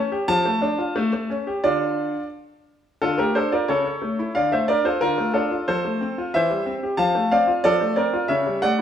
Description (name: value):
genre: classical-period piano sonatina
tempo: 91 BPM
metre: 2/4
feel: straight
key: D minor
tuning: A4 = 443 Hz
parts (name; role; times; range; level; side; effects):
- bright concert grand piano; solo; 0.0-8.8 s; C#3 to A5; -19 LUFS; equal; none
room: wet stone room reverb, RT60 1.2 s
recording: none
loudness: -19 LUFS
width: side -9 dB against mid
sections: 0.0-3.0 A section; 3.0-8.8 A section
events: none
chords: 0.3 Dm/F; 1.0 A7; 1.6 Dm; 3.7 A/C#; 4.3 Dm; 5.7 F; 6.3 C/E; 7.0 F; 8.3 A7/C#